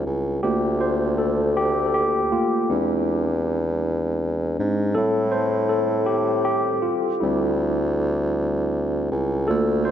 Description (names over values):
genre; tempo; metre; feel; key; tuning
slow six-eight R&B; 53 BPM (dotted quarters); 6/8; straight; unclear; A4 = 439 Hz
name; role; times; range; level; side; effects
tine electric piano; accompaniment; 0.0-9.9 s; G3 to C5; -22 LUFS; equal; medium stereo tremolo
mellow bassoon; bass; 0.1-9.9 s; C#2 to A2; -23 LUFS; equal; none
room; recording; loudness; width
wet huge ambient reverb, RT60 4.5 s; dreamy mix soaked in reverb; -20 LUFS; side -9 dB against mid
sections
0.0-9.9 A section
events
tine electric piano solo 0.0-9.9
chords
0.4 Bbmaj13/D; 2.7 E7b13; 5.0 Am7; 7.2 D9sus4